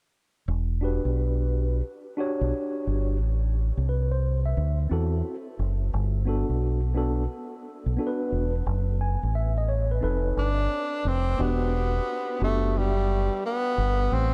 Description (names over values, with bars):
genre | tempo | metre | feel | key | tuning
hip hop | 88 BPM | 4/4 | swing 66% on 16ths | E minor | A4 = 440 Hz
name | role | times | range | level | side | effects
deep dub fingered electric bass | bass | 0.5-14.3 s | E1 to E2 | -27 LUFS | equal | none
mellow tine electric piano | accompaniment | 0.8-12.9 s | B3 to G#5 | -33 LUFS | equal | none
breathy tenor saxophone | melody | 10.4-14.3 s | G3 to D4 | -29 LUFS | equal | delay
room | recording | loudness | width
light reverb, small room ambience | none | -26 LUFS | mono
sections
0.5-11.4 A section; 11.4-14.3 B section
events
none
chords
0.5 Em9; 3.2 Am; 4.6 D9; 5.9 Gmaj7; 8.7 F#m; 10.0 F7#11; 11.4 Em9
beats
| 0.48 1.16 1.84 2.53 | 3.21 3.89 4.57 5.25 | 5.94 6.62 7.30 7.98 | 8.66 9.35 10.03 10.71 | 11.39 12.07 12.75 13.44 | 14.12